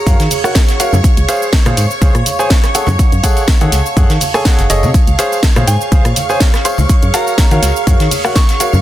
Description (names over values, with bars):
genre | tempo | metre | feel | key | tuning
piano house | 123 BPM | 4/4 | swing 54% on 16ths | unclear | A4 = 439 Hz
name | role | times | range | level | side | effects
soft synth bell | melody | 0.0-0.2, 5.7-8.8 s | Ab5 to Db6 | -23 LUFS | equal | chorus, digital delay
string machine, violins | sustained chords | 0.0-8.8 s | Db5 to Db6 | -23 LUFS | equal | ensemble chorus, sidechain pumping
warbly tape-like pad | texture | 0.0-8.8 s | Ab4 to A5 | -23 LUFS | right 4 dB | chorus, built-in reverb, sidechain pumping
clear concert grand piano | riff | 0.1-8.7 s | Gb4 to Ab5 | -18 LUFS | equal | sidechain pumping, digital delay
organ-like FM bass | bass | 0.1-8.8 s | Gb1 to Eb3 | -14 LUFS | equal | sidechain pumping
electronic kick drum | drums | 0.1-8.5 s | none | -11 LUFS | equal | none
house drum kit | drums | 0.1-8.8 s | hi-hat, rim click, shaker, snare drum | -18 LUFS | equal | none
vintage brush drum kit | drums | 0.1-8.7 s | hi-hat, snare drum | -27 LUFS | right 3 dB | none
tambourine and congas | percussion | 0.1-8.8 s | none | -24 LUFS | left 4 dB | none
room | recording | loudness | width
studio ambience | dense, heavily limited modern master | -9 LUFS | side -13 dB against mid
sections
0.0-8.8 A section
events
none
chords
0.0 Gbmaj7; 1.0 Dbmaj7; 2.7 Gbmadd9; 4.9 Dbmaj7; 6.9 Gbmaj7